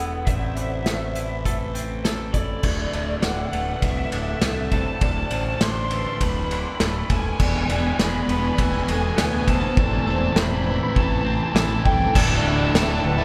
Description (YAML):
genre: post-rock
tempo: 101 BPM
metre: 4/4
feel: straight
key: unclear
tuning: A4 = 441 Hz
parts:
  - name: lead guitar through a small cranked amp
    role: melody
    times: 0.0-13.2 s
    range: D5 to C6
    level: -31 LUFS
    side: equal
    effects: overdrive
  - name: pedal steel guitar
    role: sustained chords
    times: 0.0-13.2 s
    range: C3 to E5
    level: -37 LUFS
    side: equal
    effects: none
  - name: twelve-string electric guitar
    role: arpeggios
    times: 0.0-13.2 s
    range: D2 to A4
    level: -34 LUFS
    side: equal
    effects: spring reverb
  - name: vibraphone with hard mallets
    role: arpeggios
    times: 0.0-13.2 s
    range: A4 to D5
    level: -34 LUFS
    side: equal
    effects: none
  - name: fuzz fingered electric bass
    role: bass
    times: 0.0-13.2 s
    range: D1 to D2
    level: -29 LUFS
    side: equal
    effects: overdrive
  - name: loose indie drum kit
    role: drums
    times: 0.3-12.9 s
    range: crash cymbal, hi-hat, kick drum, ride cymbal, snare drum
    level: -26 LUFS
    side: equal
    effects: none
  - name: overdriven semi-hollow guitar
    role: riff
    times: 7.4-13.2 s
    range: D2 to E4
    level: -28 LUFS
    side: equal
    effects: none
  - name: overdriven electric guitar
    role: riff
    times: 12.1-13.2 s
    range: D2 to E4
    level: -28 LUFS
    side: equal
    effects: phaser
room: wet cathedral reverb, RT60 4.6 s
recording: recorded in a church or concert hall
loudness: -22 LUFS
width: mono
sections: 0.0-2.6 A section; 2.6-12.2 B section; 12.2-13.2 C section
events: build-up 2.6-12.2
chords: 0.3 Am; 2.6 Dadd9; 7.4 E7; 9.8 Am; 12.2 Dadd9